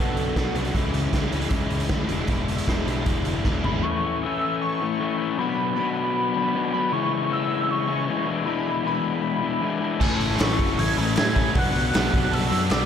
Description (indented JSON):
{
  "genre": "indie rock",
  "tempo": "155 BPM",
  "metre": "4/4",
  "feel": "straight",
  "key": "unclear",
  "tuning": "A4 = 440 Hz",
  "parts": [
    { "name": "hollow square lead", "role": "melody", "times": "0.0-0.5, 3.6-12.9 s", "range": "A4 to G#6", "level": "-28 LUFS", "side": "right 1 dB", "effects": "chorus, slapback echo, analog delay" },
    { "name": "biting overdriven guitar", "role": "riff", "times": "0.0-3.8, 10.0-12.9 s", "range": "E2 to A4", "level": "-30 LUFS", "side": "right 6 dB", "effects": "lush chorus, slapback echo, analog delay" },
    { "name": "crunchy overdriven guitar", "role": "riff", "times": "0.0-12.9 s", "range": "E2 to F#4", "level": "-26 LUFS", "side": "left 6 dB", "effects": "none" },
    { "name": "fingered electric bass", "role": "bass", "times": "0.0-3.8, 10.0-12.9 s", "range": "E1 to A2", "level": "-28 LUFS", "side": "right 1 dB", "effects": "none" },
    { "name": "raw garage drum kit", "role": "drums", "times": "0.2-3.7, 10.0-12.8 s", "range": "crash cymbal, hi-hat, kick drum, snare drum, toms", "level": "-25 LUFS", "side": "right 1 dB", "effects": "none" },
    { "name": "tonewheel organ", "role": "sustained chords", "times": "3.9-12.9 s", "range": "A4 to D6", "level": "-37 LUFS", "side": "right 1 dB", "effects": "overdrive, slow rotary speaker" },
    { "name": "tine electric piano", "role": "second line", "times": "10.0-12.9 s", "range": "F#5 to A5", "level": "-37 LUFS", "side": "right 6 dB", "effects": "none" },
    { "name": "group handclap", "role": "percussion", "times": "10.4-12.8 s", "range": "none", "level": "-40 LUFS", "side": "left 5 dB", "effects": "none" }
  ],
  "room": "moderate lush hall reverb, RT60 1.9 s, small room reverb",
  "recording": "big arena sound",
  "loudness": "-21 LUFS",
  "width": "side -8 dB against mid",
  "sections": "0.0-3.8 A section; 3.8-12.9 B section",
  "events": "drum fill 3.5-3.8",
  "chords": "0.0 Bm7; 0.7 C#m; 2.1 E7; 3.8 Amaj7; 5.4 Bm7; 6.9 C#m7; 8.3 E7; 10.0 Amaj7; 11.6 Bm7",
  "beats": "0.36 | 0.75 1.13 1.52 1.91 | 2.29 2.68 3.06 3.45 | 3.84 4.22 4.61 5.00 | 5.38 5.77 6.15 6.54 | 6.93 7.31 7.70 8.09 | 8.47 8.86 9.24 9.63 | 10.01 10.40 10.79 11.17 | 11.56 11.94 12.33 12.71"
}